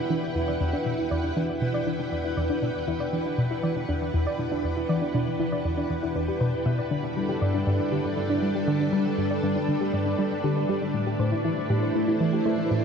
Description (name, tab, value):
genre	ambient, sequencer-driven space music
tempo	119 BPM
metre	4/4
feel	straight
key	E minor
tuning	A4 = 441 Hz
part	string machine, full ensemble	sustained chords	0.0-12.8 s	G3 to G5	-28 LUFS	right 1 dB	ensemble chorus
part	soft round pluck	arpeggios	0.0-12.8 s	D4 to E5	-31 LUFS	moving between left 5 dB and right 2 dB	chorus, auto-pan, ping-pong delay
part	tight sequenced synth	riff	0.0-12.8 s	E2 to A3	-27 LUFS	equal	chorus, ping-pong delay
part	bubbling stepped-filter texture	texture	2.4-12.8 s	D4 to D5	-38 LUFS	left 2 dB	chorus, built-in reverb
room	wet huge ambient reverb, RT60 7.6 s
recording	worn, warbling old tape, cassette tape, warbly pitch drift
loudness	-24 LUFS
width	side -6 dB against mid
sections	0.0-12.8 A section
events	fade-in on synth texture 0.0-12.8; filter sweep on synth arpeggio sound 0.0-12.8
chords	0.0 Em7; 6.9 G; 10.9 Am7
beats	0.36 | 0.86 1.36 1.87 2.37 | 2.88 3.38 3.88 4.39 | 4.89 5.40 5.90 6.41 | 6.91 7.41 7.92 8.42 | 8.93 9.43 9.94 10.44 | 10.94 11.45 11.95 12.46